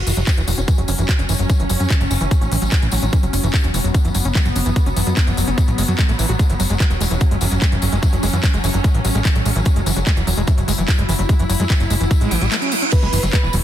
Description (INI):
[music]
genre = psychedelic trance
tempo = 147 BPM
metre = 4/4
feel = straight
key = F# minor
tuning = A4 = 439 Hz
[part]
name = swarming drone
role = sustained chords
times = 0.0-13.6 s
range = F#3 to E4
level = -24 LUFS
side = equal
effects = built-in reverb, sidechain pumping
[part]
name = plucky analog bass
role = bass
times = 0.0-13.6 s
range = E1 to F#2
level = -19 LUFS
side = equal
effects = none
[part]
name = overdriven acid bass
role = riff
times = 0.1-13.6 s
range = E3 to F#4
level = -26 LUFS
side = right 1 dB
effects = distortion, auto-pan, sidechain pumping, digital delay
[part]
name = drum and bass drum kit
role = drums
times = 0.1-13.6 s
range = crash cymbal, handclaps, hi-hat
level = -25 LUFS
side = left 1 dB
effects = studio reverb
[part]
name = tambourine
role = percussion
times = 0.1-13.6 s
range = none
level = -30 LUFS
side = left 6 dB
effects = none
[part]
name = electronic kick drum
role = drums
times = 0.3-13.4 s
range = none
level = -16 LUFS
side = equal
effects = overdrive, studio reverb
[part]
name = reverse cymbal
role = sound effects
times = 12.3-12.9 s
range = none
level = -26 LUFS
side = right 5 dB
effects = none
[part]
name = wide unison lead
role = melody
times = 12.9-13.5 s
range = B4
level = -24 LUFS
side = right 2 dB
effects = phaser, sidechain pumping, dub echo
[sound]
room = little or no reverb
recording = dense, heavily limited modern master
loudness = -15 LUFS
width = side -11 dB against mid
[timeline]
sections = 0.0-12.9 A section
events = reverse cymbal 12.3-12.9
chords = 0.0 F#5